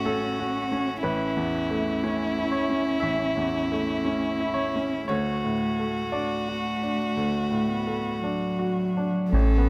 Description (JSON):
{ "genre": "neoclassical piano and strings", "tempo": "52-62 BPM", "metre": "4/4", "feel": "rubato", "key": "unclear", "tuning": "A4 = 437 Hz", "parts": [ { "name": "rich violin", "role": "melody", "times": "0.0-9.7 s", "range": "E4 to A4", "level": "-33 LUFS", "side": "equal", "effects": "none" }, { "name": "dark cello", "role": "second line", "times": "0.0-9.7 s", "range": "F#3 to C#4", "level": "-31 LUFS", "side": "equal", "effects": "none" }, { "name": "bright baby grand piano", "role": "accompaniment", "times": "0.0-9.7 s", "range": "A1 to A5", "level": "-30 LUFS", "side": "equal", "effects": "none" }, { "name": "warm sub bass", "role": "bass", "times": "9.3-9.7 s", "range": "A1", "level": "-22 LUFS", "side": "equal", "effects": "none" } ], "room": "little or no reverb", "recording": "close, detailed microphones", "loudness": "-27 LUFS", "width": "mono", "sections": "0.0-9.3 A section", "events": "none", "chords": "0.0 F#m/A; 1.0 Aadd9; 5.1 D" }